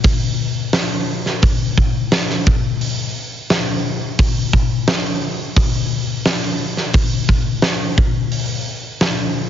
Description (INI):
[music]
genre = rock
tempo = 87 BPM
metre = 4/4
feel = straight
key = none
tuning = none
[part]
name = huge arena drum kit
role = drums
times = 0.0-9.2 s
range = hi-hat, kick drum, snare drum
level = -16 LUFS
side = equal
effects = none
[sound]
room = little or no reverb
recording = heavily compressed radio sound, nothing above 7.5 kHz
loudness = -16 LUFS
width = side -10 dB against mid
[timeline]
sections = 0.0-9.5 A section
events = none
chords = none